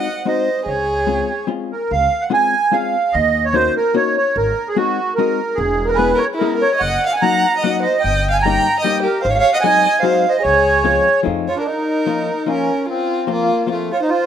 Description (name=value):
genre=musette waltz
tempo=148 BPM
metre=3/4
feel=swing 54% on 8ths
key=Db major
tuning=A4 = 439 Hz
part: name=accordion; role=melody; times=0.0-14.3 s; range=A3 to Bb5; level=-16 LUFS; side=right 3 dB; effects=light tremolo tuning
part: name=warm violin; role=second line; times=0.0-1.4, 5.9-14.3 s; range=E4 to G5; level=-20 LUFS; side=equal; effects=none
part: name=vintage hollow-body jazz guitar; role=accompaniment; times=0.0-13.9 s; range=F3 to Bb4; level=-22 LUFS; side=left 10 dB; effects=none
part: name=upright bass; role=bass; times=0.7-11.5 s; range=E1 to F2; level=-23 LUFS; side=equal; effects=none
room=light reverb, small room ambience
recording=rough home demo mix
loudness=-14 LUFS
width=side -9 dB against mid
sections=0.0-1.9 A section; 1.9-11.7 A section; 11.7-14.3 B section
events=none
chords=0.0 Ab7; 0.7 Dbmaj7; 3.1 Ebm7; 4.4 Ab7; 5.6 E6; 6.8 Gb6; 8.0 Eb7/G; 9.2 Ab7; 10.4 Dbmaj7; 11.3 F7; 11.7 Bbm; 12.9 Fsus4